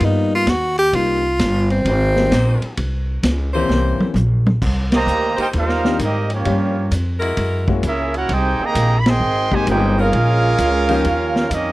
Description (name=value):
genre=jazz, big band swing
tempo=130 BPM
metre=4/4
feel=swing 66% on 8ths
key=C minor from 4.6 s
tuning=A4 = 440 Hz
part: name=clear tenor saxophone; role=melody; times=0.0-2.7 s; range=C4 to G4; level=-18 LUFS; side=equal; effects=none
part: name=clear concert grand piano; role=accompaniment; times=0.0-11.0 s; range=Eb3 to G4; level=-22 LUFS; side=left 5 dB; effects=none
part: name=upright bass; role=bass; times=0.0-11.7 s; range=G1 to Ab2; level=-19 LUFS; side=equal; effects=none
part: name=vintage drum kit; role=drums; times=0.0-11.6 s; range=crash cymbal, hi-hat, kick drum, ride cymbal, snare drum, toms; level=-23 LUFS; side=equal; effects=none
part: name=clear saxophone section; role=sustained chords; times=2.3-11.5 s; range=F3 to C5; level=-24 LUFS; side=left 1 dB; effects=none
part: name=clear trumpet section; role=melody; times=4.9-11.7 s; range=Bb3 to C6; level=-19 LUFS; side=right 2 dB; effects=none
part: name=bright trombone section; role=second line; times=4.9-11.7 s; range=C3 to G4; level=-24 LUFS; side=right 3 dB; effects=none
room=little or no reverb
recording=dry, close 1970s-style studio recording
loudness=-15 LUFS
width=side -18 dB against mid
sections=0.0-4.6 A section; 4.6-11.7 B section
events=tenor saxophone solo 0.0-4.6; drum fill 3.7-4.6; band accent 4.8, 9.0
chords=0.0 G7alt; 0.9 Cm7; 2.8 C7b9; 4.6 Cm7; 6.5 Gm7b5; 7.4 F#9; 8.3 Fm11 (rootless); 10.1 Bbm7; 11.0 Eb9